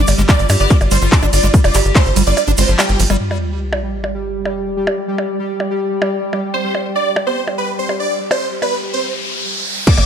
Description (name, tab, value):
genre	psychedelic trance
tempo	144 BPM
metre	4/4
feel	straight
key	unclear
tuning	A4 = 440 Hz
part	dense compressed supersaw	melody	0.0-3.0, 6.5-10.1 s	G4 to D6	-19 LUFS	right 2 dB	phaser, sidechain pumping, ping-pong delay
part	pulsing gated texture	sustained chords	0.0-10.1 s	G3 to G4	-23 LUFS	right 1 dB	chorus, built-in reverb, sidechain pumping
part	tight sequencer bass	bass	0.0-3.2, 10.0 s	F1 to G2	-15 LUFS	equal	none
part	techno drum kit	drums	0.1-10.1 s	crash cymbal, handclaps, hi-hat, percussion blips, ride cymbal	-20 LUFS	right 1 dB	none
part	tube shaker	percussion	0.1-3.2 s	none	-26 LUFS	right 4 dB	none
part	liquid acid bass	riff	0.2-3.2, 9.9 s	F3 to G4	-21 LUFS	moving between left 4 dB and right 5 dB	phaser, auto-pan, sidechain pumping, ping-pong delay
part	electronic kick drum	drums	0.3-2.0, 9.9-10.0 s	none	-12 LUFS	equal	none
part	resonant blip pluck	second line	0.6-0.8, 7.3-7.4 s	B3	-32 LUFS	left 5 dB	chorus, sidechain pumping, high-pass filter, ping-pong delay
part	sub drop, riser and downlifter	sound effects	3.2-10.1 s	none	-24 LUFS	equal	none
part	warbly tape-like pad	texture	4.0-9.0 s	G4 to G5	-28 LUFS	left 3 dB	chorus, built-in reverb, phaser, sidechain pumping
room	digital ambience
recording	none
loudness	-14 LUFS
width	side -8 dB against mid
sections	0.0-3.2 A section; 3.2-9.9 B section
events	drop 0.0-3.2; kick drops out 2.4-3.2; impact 3.2-4.9; riser 7.9-9.9; break 9.0-9.9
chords	0.0 G5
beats	0.29 0.70 1.12 | 1.54 1.96 2.37 2.79 | 3.21 3.62 4.04 4.46 | 4.87 5.29 5.71 6.12 | 6.54 6.96 7.37 7.79 | 8.21 8.62 9.04 9.46 | 9.87